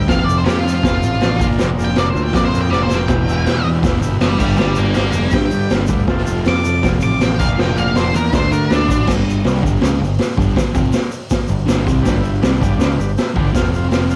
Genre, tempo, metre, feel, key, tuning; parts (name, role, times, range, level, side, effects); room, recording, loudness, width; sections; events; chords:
garage rock duo or trio; 160 BPM; 4/4; straight; A4 = 441 Hz
octave-fuzz lead guitar; melody; 0.0-9.1 s; D4 to D6; -24 LUFS; equal; distortion, cassette tape, plate reverb
combo organ; sustained chords; 0.0-9.0, 12.0-14.2 s; F4 to F5; -32 LUFS; equal; plate reverb
fuzz guitar; riff; 0.0-14.2 s; E2 to D4; -22 LUFS; equal; distortion
growling picked electric bass; bass; 0.0-14.2 s; E1 to D3; -21 LUFS; equal; overdrive
tube shaker; percussion; 0.0-14.2 s; -40 LUFS; equal
raw garage drum kit; drums; 0.1-14.0 s; crash cymbal, hi-hat, kick drum, snare drum; -20 LUFS; equal; cassette tape
light reverb; home recording on cassette; -16 LUFS; mono
0.0-9.1 A section; 9.1-14.2 B section
lead electric guitar solo 0.0-9.1; drum fill 2.7-3.1
0.1 F; 1.4 Bb/F; 3.1 Em; 4.4 G; 6.1 F; 7.4 Bb/F; 8.3 D; 9.1 G; 13.5 F5